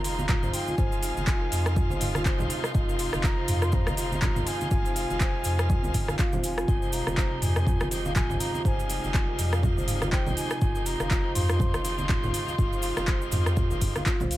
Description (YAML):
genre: afro house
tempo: 122 BPM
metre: 4/4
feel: swing 57% on 16ths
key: F minor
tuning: A4 = 440 Hz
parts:
  - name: bansuri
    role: melody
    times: 0.0-14.0 s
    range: F5 to C6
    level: -37 LUFS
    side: left 1 dB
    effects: tape echo
  - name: dark symphonic string section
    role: sustained chords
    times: 0.0-14.4 s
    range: C3 to F4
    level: -36 LUFS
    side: left 1 dB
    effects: sidechain pumping
  - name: marimba with soft mallets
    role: arpeggios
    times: 0.0-14.4 s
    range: F4 to F5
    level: -33 LUFS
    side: right 1 dB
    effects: sidechain pumping, tape echo
  - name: bright tonewheel organ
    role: stabs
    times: 0.0-14.0 s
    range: G3 to F5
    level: -36 LUFS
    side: right 2 dB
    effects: overdrive, fast rotary speaker, sidechain pumping
  - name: warm sub bass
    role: bass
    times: 0.0-14.4 s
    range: F1 to F2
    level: -30 LUFS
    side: equal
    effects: sidechain pumping
  - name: afro-pop drum kit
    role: drums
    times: 0.0-14.4 s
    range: handclaps, hi-hat, rim click, toms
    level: -32 LUFS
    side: equal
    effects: none
  - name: cabasa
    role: percussion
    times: 0.1-14.4 s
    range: none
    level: -39 LUFS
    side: right 3 dB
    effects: none
  - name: congas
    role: percussion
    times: 0.2-14.3 s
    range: none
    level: -34 LUFS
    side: right 1 dB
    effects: none
  - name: electronic kick drum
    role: drums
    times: 0.3-14.2 s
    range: none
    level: -27 LUFS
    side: equal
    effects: none
room: studio reverb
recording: none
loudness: -24 LUFS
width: side -15 dB against mid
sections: 0.0-14.4 A section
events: none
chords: 0.0 Fm7; 6.7 Abmaj7/F